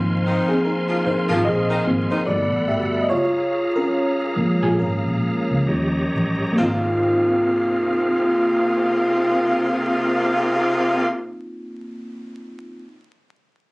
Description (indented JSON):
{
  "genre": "R&B, neo-soul",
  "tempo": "65-76 BPM",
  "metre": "4/4",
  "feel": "swing 59% on 16ths",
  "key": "Ab major",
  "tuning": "A4 = 439 Hz",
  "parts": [
    { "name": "mellow FM electric piano", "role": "accompaniment", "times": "0.0-12.8 s", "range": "F3 to Fb5", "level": "-22 LUFS", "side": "equal", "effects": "chorus" },
    { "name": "bright tonewheel organ", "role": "sustained chords", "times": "0.0-11.1 s", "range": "C4 to C6", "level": "-26 LUFS", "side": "equal", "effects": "fast rotary speaker, chorus vibrato" },
    { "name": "vintage muted fingered electric bass", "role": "bass", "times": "0.0-11.2 s", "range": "Gb1 to Eb2", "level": "-25 LUFS", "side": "equal", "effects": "none" },
    { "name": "clear saxophone section", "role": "stabs", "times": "0.3-11.1 s", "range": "C3 to F4", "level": "-22 LUFS", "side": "equal", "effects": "none" },
    { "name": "electric guitar through a small old amp", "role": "second line", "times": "1.3-11.3 s", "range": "Bb3 to Bb4", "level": "-22 LUFS", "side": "equal", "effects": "none" }
  ],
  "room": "light reverb",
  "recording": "recorded on a phone in the room, club reverb, vinyl crackle, compression",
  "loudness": "-18 LUFS",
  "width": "side -24 dB against mid",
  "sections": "0.0-6.6 A section; 6.6-10.3 B section",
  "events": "slowing down 0.0-6.6; FM electric piano solo 0.0-6.6",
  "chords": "0.0 Ab69; 2.3 Gmaj9; 3.1 Gbmaj9; 5.7 Eb7; 6.6 Ab69",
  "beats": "0.65 1.45 2.26 | 3.08 3.92 4.78 5.67 | 6.58 7.51 8.44 9.37"
}